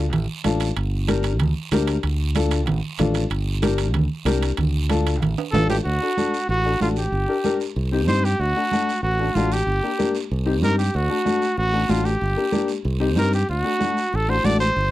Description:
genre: latin, cumbia.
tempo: 189 BPM.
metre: 4/4.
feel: straight.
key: unclear.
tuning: A4 = 438 Hz.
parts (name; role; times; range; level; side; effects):
clear upright piano; accompaniment; 0.0-14.6 s; A3 to Bb4; -24 LUFS; left 5 dB; none.
fingered electric bass; bass; 0.0-14.9 s; G1 to G2; -22 LUFS; equal; none.
congas; percussion; 0.1-14.9 s; none; -26 LUFS; right 3 dB; none.
guiro; percussion; 0.1-14.9 s; none; -36 LUFS; right 9 dB; none.
timbales; percussion; 0.1-5.8 s; none; -30 LUFS; right 9 dB; none.
clear trumpet; melody; 5.5-14.9 s; F4 to D5; -23 LUFS; right 1 dB; none.
room: light reverb.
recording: dry, close 1970s-style studio recording.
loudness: -19 LUFS.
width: side -15 dB against mid.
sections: 0.0-5.9 A section; 5.9-14.9 B section.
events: drum fill 5.4-5.9.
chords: 0.0 Dm; 0.8 Gm; 2.0 Dm; 3.3 Gm; 4.6 Dm; 5.9 D; 7.1 Gm; 7.8 Cm; 8.4 D; 9.7 Gm; 10.3 Cm; 10.9 D; 12.2 Gm; 12.9 Cm; 13.5 D.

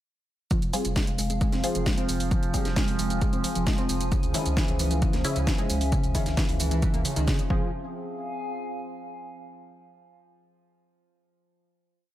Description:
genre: driving peak-time techno.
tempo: 133 BPM.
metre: 4/4.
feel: straight.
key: F harmonic minor.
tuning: A4 = 440 Hz.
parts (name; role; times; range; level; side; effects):
warbly dusty pluck; riff; 0.5-7.7 s; Db3 to C4; -31 LUFS; equal; overdrive, lush chorus, sidechain pumping, digital delay.
overtone-sweeping drone; drone; 0.9-7.8 s; F3; -36 LUFS; right 4 dB; chorus, built-in reverb, sidechain pumping.
electronic kick drum; drums; 0.5-7.6 s; none; -26 LUFS; equal; overdrive, studio reverb.
techno drum kit; drums; 0.5-7.5 s; hi-hat, shaker, snare drum; -32 LUFS; equal; overdrive, studio reverb.
warbly tape-like pad; texture; 1.1-9.5 s; C4 to Ab5; -35 LUFS; left 1 dB; chorus, built-in reverb, sidechain pumping.
saturated sub bass; bass; 0.6-7.7 s; F1 to Db2; -29 LUFS; equal; overdrive, sidechain pumping, low-pass filter.
filtered dub chord stab; stabs; 0.7-7.7 s; Ab3 to Ab4; -34 LUFS; left 2 dB; phaser, sidechain pumping, digital delay.
room: light reverb.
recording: none.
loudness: -24 LUFS.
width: side -13 dB against mid.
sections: 0.5-7.7 drop; 7.7-9.5 final chord.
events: drop 0.5-7.7.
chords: 0.5 Fm; 4.1 Dbm; 7.5 Fm.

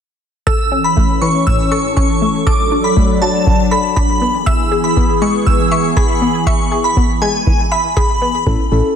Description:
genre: synth-pop.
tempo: 120 BPM.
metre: 4/4.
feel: straight.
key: unclear.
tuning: A4 = 440 Hz.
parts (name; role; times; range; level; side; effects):
shimmering bell with halo; second line; 0.5-8.3 s; G#5 to E6; -17 LUFS; equal; ensemble chorus, ping-pong delay.
phased analog pad; sustained chords; 0.5-8.4 s; E3 to A4; -18 LUFS; left 1 dB; phaser, chorus.
analog pluck; arpeggios; 0.5-8.4 s; A2 to E5; -20 LUFS; left 4 dB; chorus, ping-pong delay.
electronic kick drum; drums; 0.5-8.6 s; none; -16 LUFS; right 1 dB; overdrive.
muted felt-like synth keys; accompaniment; 8.5-9.0 s; C#4 to A4; -16 LUFS; left 3 dB; chorus.
solid FM bass; bass; 8.5-8.8 s; A1; -15 LUFS; right 1 dB; none.
room: moderate lush hall reverb, RT60 1.7 s.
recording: dense, heavily limited modern master.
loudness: -12 LUFS.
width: side -8 dB against mid.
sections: 0.5-8.5 A section.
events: none.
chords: 0.5 A; 2.5 D; 4.2 E.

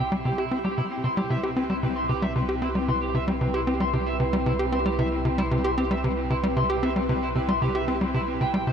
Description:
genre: ambient, sequencer-driven space music.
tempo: 114 BPM.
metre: 4/4.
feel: straight.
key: C major.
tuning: A4 = 439 Hz.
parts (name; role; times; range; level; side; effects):
electric guitar at the edge of break-up; arpeggios; 0.0-8.7 s; C4 to C6; -28 LUFS; equal; auto-pan, low-pass filter, tape echo.
tight sequencer bass; riff; 0.0-8.7 s; C3 to G4; -26 LUFS; equal; tape echo.
warm sub bass; bass; 0.0-8.7 s; C2; -33 LUFS; equal; none.
pulsing gated texture; texture; 0.0-8.7 s; E4 to E5; -31 LUFS; right 1 dB; chorus, built-in reverb.
room: wet shimmer reverb, RT60 7.9 s.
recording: none.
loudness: -23 LUFS.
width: side -7 dB against mid.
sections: 0.0-8.7 A section.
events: fade-in on synth texture 0.0-8.7.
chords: 0.0 C.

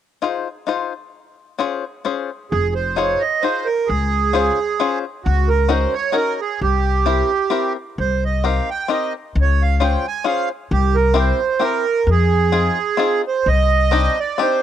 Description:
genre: musette waltz.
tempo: 132 BPM.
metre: 3/4.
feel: straight.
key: F minor.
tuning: A4 = 441 Hz.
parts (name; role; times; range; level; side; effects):
bluegrass banjo; accompaniment; 0.2-14.6 s; C4 to C5; -21 LUFS; left 9 dB; none.
accordion; melody; 2.5-14.6 s; Gb4 to Ab5; -19 LUFS; right 6 dB; cassette tape.
upright bass; bass; 2.5-14.1 s; F1 to F2; -18 LUFS; left 1 dB; none.
room: light reverb.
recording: home recording on cassette.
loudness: -16 LUFS.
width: side -10 dB against mid.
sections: 0.0-2.5 A section; 2.5-13.5 B section; 13.5-14.6 C section.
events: none.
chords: 0.0 Fm7; 1.1 Dbmaj7; 2.5 Fm7; 3.9 Dbmaj7; 5.3 Gb6/Db; 6.6 C7; 8.0 Cm7; 9.4 Dbmaj7; 10.7 C7; 12.1 Fm7; 13.5 Cmadd9.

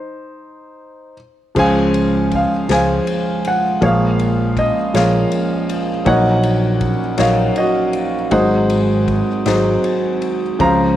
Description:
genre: acoustic folk-pop ballad.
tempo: 53 BPM (dotted quarters).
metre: 6/8.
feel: straight.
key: Db major.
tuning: A4 = 439 Hz.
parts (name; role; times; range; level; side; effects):
dark concert grand piano; melody; 0.0-11.0 s; Ab1 to Bb5; -15 LUFS; left 1 dB; none.
vibraphone with soft mallets; arpeggios; 1.6-11.0 s; Ab3 to Gb4; -25 LUFS; right 12 dB; none.
fretless electric bass; bass; 1.6-11.0 s; Ab1 to Db2; -20 LUFS; equal; none.
unplugged drum kit; drums; 1.6-10.8 s; crash cymbal, kick drum, ride cymbal, snare drum; -28 LUFS; left 5 dB; none.
room: light reverb.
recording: 1960s-style stereo.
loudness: -14 LUFS.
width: side -12 dB against mid.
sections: 0.0-1.6 A section; 1.6-11.0 B section.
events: stop 0.0-1.6.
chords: 0.0 N.C.; 1.6 Dbmaj7; 3.8 Bbm7; 6.1 Ebm7/Bb; 8.3 Ab7.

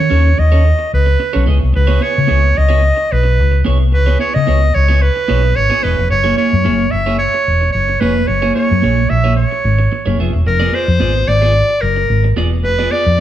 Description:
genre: disco.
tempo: 110 BPM.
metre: 4/4.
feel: straight.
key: C# minor.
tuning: A4 = 440 Hz.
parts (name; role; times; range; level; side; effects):
bright clarinet; melody; 0.0-13.2 s; A#4 to E5; -16 LUFS; right 1 dB; none.
hollow-body short-scale fingered electric bass; bass; 0.0-13.2 s; E1 to C#3; -13 LUFS; equal; none.
clean electric guitar; accompaniment; 0.1-13.1 s; A#3 to E5; -20 LUFS; right 2 dB; spring reverb.
room: moderate large studio reverb, RT60 1.2 s.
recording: band playing live in one room.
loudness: -11 LUFS.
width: side -12 dB against mid.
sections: 0.0-13.2 A section.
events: none.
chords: 0.0 D#m7b5; 1.5 C#m7; 6.1 F#9; 10.2 A#7b9.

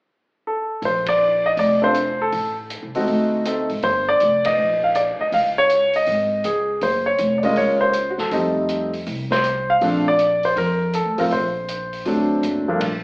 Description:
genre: jazz piano trio.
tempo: 160 BPM.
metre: 4/4.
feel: swing 65% on 8ths.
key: Bb major.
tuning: A4 = 439 Hz.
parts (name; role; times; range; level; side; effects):
warm grand piano; melody; 0.5-12.8 s; G2 to F5; -18 LUFS; equal; plate reverb, slapback echo.
upright bass; bass; 0.8-13.0 s; F1 to Gb2; -27 LUFS; equal; none.
swinging big-band drum kit; drums; 0.8-12.9 s; hi-hat, kick drum, ride cymbal, snare drum; -32 LUFS; equal; none.
room: moderate club reverb, RT60 0.6 s.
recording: live gig heard through the venue's PA, club reverb, AM radio sound.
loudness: -17 LUFS.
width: side -27 dB against mid.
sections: 0.8-12.8 A section.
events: band accent 1.0, 4.4.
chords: 0.0 N.C.; 0.8 Bbadd9; 2.3 Am; 3.1 D7b9; 3.8 Gm7; 5.3 Dbsus2; 6.8 Gbmaj9; 8.3 F7; 9.8 Bbmaj9; 12.1 D7.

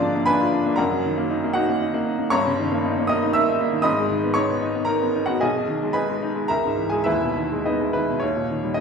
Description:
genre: classical, romantic character piece for solo piano.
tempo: 102-121 BPM.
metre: 3/4.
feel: rubato.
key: G# minor.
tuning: A4 = 440 Hz.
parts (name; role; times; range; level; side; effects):
bright upright piano; solo; 0.0-8.8 s; D#1 to E6; -20 LUFS; equal; none.
room: wet recital hall reverb, RT60 1.3 s.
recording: heard from further back in the room.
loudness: -20 LUFS.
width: side -5 dB against mid.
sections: 0.0-8.8 A section.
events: none.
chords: 0.0 Bb7/Ab; 0.8 Ebm/Gb; 2.3 D#7/G; 3.9 G#m; 5.4 G#m/B; 6.5 A#m7b5/C#; 7.1 G#m/D#; 8.2 D#.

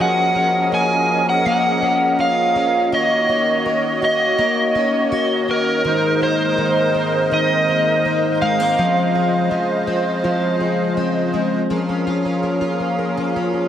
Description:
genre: dream pop.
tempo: 82 BPM.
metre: 4/4.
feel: straight.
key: Eb dorian.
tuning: A4 = 444 Hz.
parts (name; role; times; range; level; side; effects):
overdriven slide guitar; melody; 0.0-10.9 s; Bb4 to Ab5; -18 LUFS; right 1 dB; dub echo.
musette accordion; sustained chords; 0.0-13.7 s; Ab2 to F5; -22 LUFS; right 2 dB; none.
picked plugged-in twelve-string acoustic guitar; arpeggios; 0.0-13.7 s; Eb3 to Gb4; -21 LUFS; left 2 dB; analog chorus, dub echo.
room: wet spring reverb, RT60 2.5 s.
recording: echo-heavy mix.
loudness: -16 LUFS.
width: side -10 dB against mid.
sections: 0.0-11.7 A section; 11.7-13.7 B section.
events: none.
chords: 0.0 Gbmaj7; 2.9 Ebm7; 5.8 Abadd9; 8.8 Dbmaj7; 11.7 Bbm7/F.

